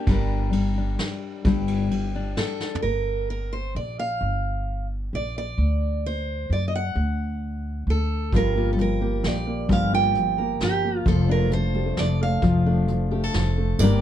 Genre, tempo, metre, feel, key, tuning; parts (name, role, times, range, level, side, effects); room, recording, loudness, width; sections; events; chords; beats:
acoustic folk duo or small band; 131 BPM; 3/4; straight; G minor; A4 = 440 Hz
fingerpicked steel-string acoustic guitar; accompaniment; 0.0-3.3, 8.3-14.0 s; G2 to Bb4; -26 LUFS; left 4 dB
felt-muted upright piano; arpeggios; 0.0-0.1, 8.3-14.0 s; F3 to D4; -28 LUFS; right 2 dB
upright bass; bass; 0.1-14.0 s; F1 to F#2; -25 LUFS; equal
vintage brush drum kit; drums; 0.1-2.9, 8.3-13.4 s; hi-hat, kick drum, ride cymbal, snare drum, toms; -27 LUFS; right 1 dB
picked steel-string acoustic guitar; melody; 2.4-14.0 s; G4 to G5; -27 LUFS; right 3 dB
tambourine; percussion; 13.8-13.9 s; -34 LUFS; right 5 dB
light reverb; dark, warm production; -21 LUFS; side -10 dB against mid
0.1-2.8 A section; 2.8-13.8 B section
drum fill 2.6
0.0 Gm; 2.8 Gm7; 5.6 D; 8.3 Gm7; 11.1 Dm/F
| 0.08 0.54 0.99 | 1.45 1.91 2.37 | 2.83 3.29 3.75 | 4.21 4.67 5.12 | 5.58 6.04 6.50 | 6.96 7.42 7.87 | 8.33 8.79 9.24 | 9.70 10.15 10.61 | 11.07 11.52 11.98 | 12.43 12.89 13.34 | 13.80